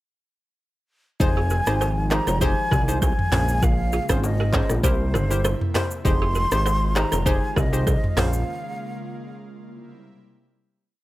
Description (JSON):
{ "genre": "afrobeats", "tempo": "99 BPM", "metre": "4/4", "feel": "swing 55% on 16ths", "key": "F minor", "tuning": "A4 = 440 Hz", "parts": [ { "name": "breathy concert flute", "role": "melody", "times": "1.2-9.4 s", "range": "C5 to C6", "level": "-28 LUFS", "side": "equal", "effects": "slapback echo" }, { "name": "hollow square pluck", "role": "accompaniment", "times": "1.2-8.4 s", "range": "Db4 to C5", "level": "-29 LUFS", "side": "left 1 dB", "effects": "chorus" }, { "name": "airy breathy pad", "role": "sustained chords", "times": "1.2-10.9 s", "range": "C3 to F4", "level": "-34 LUFS", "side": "equal", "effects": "chorus" }, { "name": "fat analog bass", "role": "bass", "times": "1.2-8.4 s", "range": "F1 to C2", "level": "-23 LUFS", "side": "equal", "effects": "none" }, { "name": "afro-pop drum kit", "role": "drums", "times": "1.2-8.5 s", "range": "handclaps, hi-hat, kick drum, rim click, shaker, toms", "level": "-23 LUFS", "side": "equal", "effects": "none" }, { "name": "congas and bongos", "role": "percussion", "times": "1.2-8.0 s", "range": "none", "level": "-32 LUFS", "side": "left 4 dB", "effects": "none" }, { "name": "balafon", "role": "riff", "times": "1.4-8.3 s", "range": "F4 to Db5", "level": "-31 LUFS", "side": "right 4 dB", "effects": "slapback echo" } ], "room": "light reverb", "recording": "none", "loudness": "-19 LUFS", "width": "side -17 dB against mid", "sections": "1.2-10.9 chorus", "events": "break 8.5-10.9; fade-out 8.5-10.9", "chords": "1.2 Fm9; 3.3 Bbm7; 4.8 C7; 6.1 Fm9; 8.2 Bbm7; 9.7 C7" }